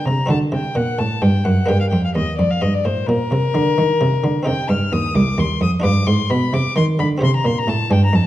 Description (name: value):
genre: classical, baroque-style sonata movement with continuo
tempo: 87 BPM (dotted quarters)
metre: 12/8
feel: straight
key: G minor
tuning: A4 = 444 Hz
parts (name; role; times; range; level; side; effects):
- rich violin; melody; 0.0-8.3 s; Bb4 to F6; -22 LUFS; left 5 dB; none
- buff-stop harpsichord; accompaniment; 0.0-8.3 s; C2 to C5; -21 LUFS; equal; none
- rich cello; bass; 0.0-8.3 s; C2 to Eb3; -18 LUFS; right 1 dB; none
room: wet recital hall reverb, RT60 1.5 s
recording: dark, warm production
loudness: -15 LUFS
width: side -14 dB against mid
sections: 0.0-8.3 A section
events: none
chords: 0.3 D7; 1.7 Gm; 4.5 Cm; 5.8 G7; 7.2 C5